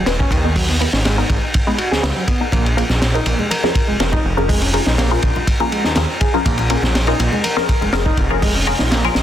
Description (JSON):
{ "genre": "breakbeat, breaks", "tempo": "122 BPM", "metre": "4/4", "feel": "straight", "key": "unclear", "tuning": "A4 = 440 Hz", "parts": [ { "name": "overdriven reed electric piano", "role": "riff", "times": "0.0-9.0 s", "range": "F#3 to A#4", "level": "-24 LUFS", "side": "right 1 dB", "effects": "fast tremolo, ping-pong delay" }, { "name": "detuned saw bass", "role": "bass", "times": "0.0-9.2 s", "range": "D#1 to D#2", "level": "-19 LUFS", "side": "equal", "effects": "none" }, { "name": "filtered dub chord stab", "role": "stabs", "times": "0.1-9.1 s", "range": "B3 to B4", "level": "-22 LUFS", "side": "left 3 dB", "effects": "phaser, analog chorus, cassette tape, ping-pong delay" }, { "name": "crunchy breakbeat drum kit", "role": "drums", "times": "0.1-9.2 s", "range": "hi-hat, kick drum, ride cymbal, snare drum", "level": "-18 LUFS", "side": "equal", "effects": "none" }, { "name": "congas", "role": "percussion", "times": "2.5-9.1 s", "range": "none", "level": "-30 LUFS", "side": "left 1 dB", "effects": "none" } ], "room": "light reverb, small room ambience", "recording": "dense, heavily limited modern master", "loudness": "-14 LUFS", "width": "side -11 dB against mid", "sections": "0.0-9.2 A section", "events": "filter sweep on synth stab 0.0-9.2", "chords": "0.0 G#m; 2.5 A#m7" }